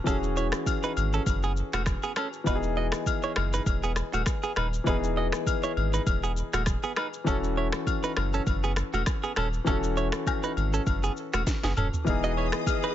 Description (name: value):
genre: afrobeats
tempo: 100 BPM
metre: 4/4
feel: swing 55% on 16ths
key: E major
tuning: A4 = 440 Hz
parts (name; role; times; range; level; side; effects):
- warm baby grand piano; accompaniment; 0.0-12.9 s; E3 to A4; -31 LUFS; left 3 dB; none
- direct-recorded clean electric guitar; riff; 0.1-12.9 s; A3 to D#5; -32 LUFS; right 5 dB; digital delay
- warm sub bass; bass; 0.1-12.5 s; D#1 to G#1; -29 LUFS; equal; none
- afro-pop drum kit; drums; 0.1-12.9 s; finger snaps, kick drum, rim click, shaker, snare drum, toms; -29 LUFS; equal; none
- agogo bells and woodblock; percussion; 0.1-12.8 s; none; -35 LUFS; left 9 dB; none
- warm studio string section; sustained chords; 12.1-12.9 s; G#4 to D#6; -34 LUFS; equal; none
room: small room reverb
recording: nothing above 7.8 kHz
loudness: -25 LUFS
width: side -11 dB against mid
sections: 0.0-12.1 A section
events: drum fill 11.5-12.1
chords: 0.0 Emaj7